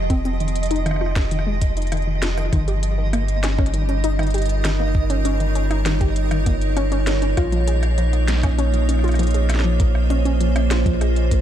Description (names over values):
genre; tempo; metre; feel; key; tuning
IDM; 99 BPM; 4/4; straight; unclear; A4 = 440 Hz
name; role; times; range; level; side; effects
icy glass pad; sustained chords; 0.0-11.4 s; F3 to Eb5; -26 LUFS; right 3 dB; chorus, built-in reverb
warm sub bass; bass; 0.0-11.4 s; F1 to Bb1; -20 LUFS; equal; none
twinkling granular texture; texture; 0.0-11.4 s; Eb5; -31 LUFS; right 5 dB; built-in reverb
warbly dusty pluck; arpeggios; 0.1-11.4 s; Eb3 to Ab4; -26 LUFS; left 2 dB; chorus, ping-pong delay
electronic kick drum; drums; 0.1-11.4 s; none; -19 LUFS; equal; small room ambience
industrial drum kit; drums; 0.1-11.4 s; hi-hat, rim click, snare drum; -30 LUFS; equal; small room ambience, ping-pong delay
room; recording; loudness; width
digital ambience; dark, warm production; -17 LUFS; side -11 dB against mid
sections
0.0-11.4 A section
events
none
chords
0.0 Fm7; 2.5 Eb7/G; 7.4 Bbm7